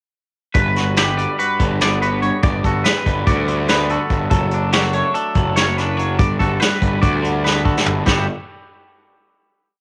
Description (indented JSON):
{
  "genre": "math rock and midwest emo",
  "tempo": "287 BPM (eighths)",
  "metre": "9/8",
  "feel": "straight",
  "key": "G lydian",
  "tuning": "A4 = 442 Hz",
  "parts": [
    { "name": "twangy electric guitar", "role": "arpeggios", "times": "0.5-8.3 s", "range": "F#4 to D5", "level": "-24 LUFS", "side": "equal", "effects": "analog chorus" },
    { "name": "vintage brush drum kit", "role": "drums", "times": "0.5-8.2 s", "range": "hi-hat, kick drum, snare drum, toms", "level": "-21 LUFS", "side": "equal", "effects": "cassette tape" },
    { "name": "twangy electric guitar", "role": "accompaniment", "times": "0.6-8.3 s", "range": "G2 to B4", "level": "-26 LUFS", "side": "equal", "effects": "none" },
    { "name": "fuzz picked electric bass", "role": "bass", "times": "0.6-8.3 s", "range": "F#1 to D2", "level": "-23 LUFS", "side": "equal", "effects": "overdrive" }
  ],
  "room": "light reverb, small room ambience",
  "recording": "home recording on cassette",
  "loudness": "-18 LUFS",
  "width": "mono",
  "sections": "0.5-8.1 A section; 8.1-9.8 final chord",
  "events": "drum fill 7.4-8.1",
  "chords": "0.5 Gmaj7; 4.3 Dmaj7/F#; 6.2 Gmaj9; 8.1 N.C."
}